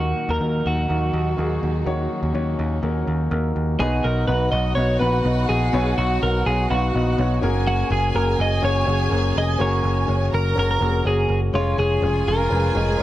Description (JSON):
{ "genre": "pop", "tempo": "124 BPM", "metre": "4/4", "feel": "straight", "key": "unclear", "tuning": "A4 = 440 Hz", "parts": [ { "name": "twelve-string electric guitar", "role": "melody", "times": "0.0-13.0 s", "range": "E#4 to D#5", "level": "-24 LUFS", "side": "right 1 dB", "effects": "none" }, { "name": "warm concert grand piano", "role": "accompaniment", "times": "0.0-13.0 s", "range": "B2 to F#5", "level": "-25 LUFS", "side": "left 2 dB", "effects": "none" }, { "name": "warm studio string section", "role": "sustained chords", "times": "0.0-3.8, 11.5-13.0 s", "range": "G#2 to F#4", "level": "-34 LUFS", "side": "right 1 dB", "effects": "none" }, { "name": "picked electric bass", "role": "bass", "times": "0.0-13.0 s", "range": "E#1 to D#2", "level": "-22 LUFS", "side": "equal", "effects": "none" }, { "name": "warm studio violin section", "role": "second line", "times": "3.8-13.0 s", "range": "F#4 to A#5", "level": "-29 LUFS", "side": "right 1 dB", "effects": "none" } ], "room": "light reverb, studio ambience", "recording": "none", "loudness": "-18 LUFS", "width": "side -14 dB against mid", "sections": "0.0-3.8 A section; 3.8-13.0 B section", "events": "none", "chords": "0.0 D#m; 3.8 B; 7.4 F#add9; 11.5 C#/E#" }